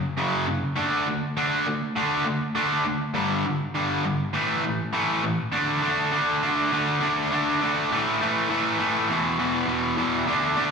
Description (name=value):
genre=punk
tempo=202 BPM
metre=4/4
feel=straight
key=A mixolydian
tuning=A4 = 440 Hz
part: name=cranked stack guitar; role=solo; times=0.2-10.7 s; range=E2 to D4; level=-22 LUFS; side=equal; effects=overdrive, slapback echo
room=little or no reverb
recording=live gig heard through the venue's PA, recital hall reverb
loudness=-22 LUFS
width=side -5 dB against mid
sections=0.0-5.5 A section; 5.5-10.7 B section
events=none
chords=0.0 F#5; 0.8 D5; 3.2 G5; 4.3 A5; 5.5 D5; 7.9 A5; 9.1 E5